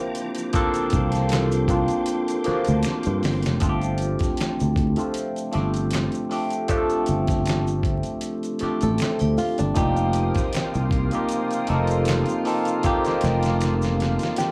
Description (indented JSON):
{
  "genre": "R&B, neo-soul",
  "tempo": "78 BPM",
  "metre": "4/4",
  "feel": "swing 55% on 16ths",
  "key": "G minor",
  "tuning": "A4 = 439 Hz",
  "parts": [
    { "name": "barky tine electric piano", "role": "accompaniment", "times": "0.0-14.5 s", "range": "F3 to A4", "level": "-26 LUFS", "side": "equal", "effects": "phaser" },
    { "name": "bright tonewheel organ", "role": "sustained chords", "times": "0.0-3.6, 9.7-14.5 s", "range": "F3 to Eb6", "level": "-38 LUFS", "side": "equal", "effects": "slow rotary speaker, chorus vibrato" },
    { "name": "dusty soul sampler-style drum kit", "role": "drums", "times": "0.1-14.5 s", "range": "handclaps, hi-hat, kick drum, snare drum", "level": "-30 LUFS", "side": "equal", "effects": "overdrive" },
    { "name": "maracas and finger snaps", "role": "percussion", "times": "0.2-14.5 s", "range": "none", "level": "-41 LUFS", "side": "equal", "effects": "none" },
    { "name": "sustaining fretless electric bass", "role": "bass", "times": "0.9-14.2 s", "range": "F1 to G2", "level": "-25 LUFS", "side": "equal", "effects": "none" },
    { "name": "flamenco guitar", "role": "second line", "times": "8.8-14.5 s", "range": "D4 to A4", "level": "-30 LUFS", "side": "equal", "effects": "none" },
    { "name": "warm horn section", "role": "stabs", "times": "9.8-14.5 s", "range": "C3 to F4", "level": "-33 LUFS", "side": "equal", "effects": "none" }
  ],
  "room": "light reverb",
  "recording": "live gig heard through the venue's PA, club ambience, vinyl crackle",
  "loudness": "-23 LUFS",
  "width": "mono",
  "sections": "0.0-3.6 A section; 3.6-14.5 B section",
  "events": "drum fill 2.8-3.6, 12.8-14.5",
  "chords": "0.0 C9sus4; 3.6 G9sus4; 9.8 F9sus4"
}